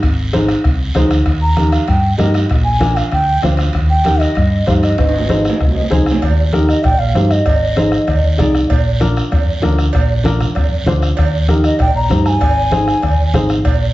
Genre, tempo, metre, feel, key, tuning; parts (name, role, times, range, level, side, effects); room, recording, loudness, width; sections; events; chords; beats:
latin, cumbia; 194 BPM; 4/4; straight; Eb major; A4 = 438 Hz
hollow-body short-scale fingered electric bass; bass; 0.0-13.9 s; Ab1 to G2; -16 LUFS; equal
bombo; percussion; 0.0-13.8 s; -18 LUFS; equal
congas; percussion; 0.0-13.8 s; -21 LUFS; equal
guiro; percussion; 0.0-13.9 s; -31 LUFS; right 3 dB
timbales and cowbell; percussion; 0.0-13.8 s; -24 LUFS; right 5 dB
warm upright piano; accompaniment; 0.3-13.6 s; D4 to Ab5; -18 LUFS; left 1 dB
bansuri; melody; 1.4-8.5, 11.7-13.5 s; Eb5 to Bb5; -18 LUFS; equal
moderate large studio reverb, RT60 1.0 s; heard from further back in the room, nothing above 7.8 kHz; -12 LUFS; side -17 dB against mid
0.0-6.2 A section; 6.2-13.9 B section
drum fill 5.0-6.2; upright piano fill 5.6-6.2
0.0 Ab; 1.3 Eb; 2.5 Bb7; 3.7 Eb; 5.0 Ab; 6.2 Eb; 7.5 Ab; 8.7 Bb; 11.2 Eb; 12.4 Ab
| 0.03 0.34 0.65 0.95 | 1.26 1.57 1.89 2.19 | 2.50 2.81 3.12 3.44 | 3.75 4.05 4.37 4.67 | 4.99 5.29 5.61 5.92 | 6.22 6.54 6.84 7.16 | 7.46 7.77 8.08 8.39 | 8.70 9.01 9.32 9.63 | 9.94 10.25 10.56 10.87 | 11.18 11.49 11.80 12.11 | 12.41 12.72 13.03 13.34 | 13.65